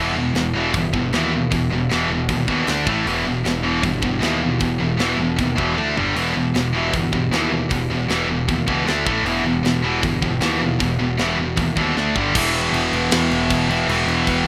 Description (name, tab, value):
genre	heavy metal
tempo	155 BPM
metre	4/4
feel	straight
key	E minor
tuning	A4 = 440 Hz
part	dark analog pad	sustained chords	0.0-14.5 s	D3 to A5	-35 LUFS	equal	none
part	heavy high-gain guitar	riff	0.0-14.5 s	E2 to D4	-26 LUFS	equal	distortion
part	scooped high-gain guitar	riff	0.0-14.5 s	E2 to D4	-23 LUFS	equal	distortion
part	fuzz picked electric bass	bass	0.0-14.5 s	E1 to E2	-28 LUFS	equal	overdrive
part	tight metal drum kit	drums	0.4-14.4 s	crash cymbal, hi-hat, kick drum, snare drum, splash cymbal, toms	-27 LUFS	equal	none
room	little or no reverb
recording	rough home demo mix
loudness	-20 LUFS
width	mono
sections	0.0-12.3 A section; 12.3-14.5 B section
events	drum fill 5.8-6.2, 12.0-12.3; half time 12.3-14.5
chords	0.0 Em; 2.7 D5; 2.9 A5; 3.1 Em; 5.8 D5; 6.0 G5; 6.2 Em; 8.9 D5; 9.1 A5; 9.3 Em; 12.0 D5; 12.2 G5; 12.3 Em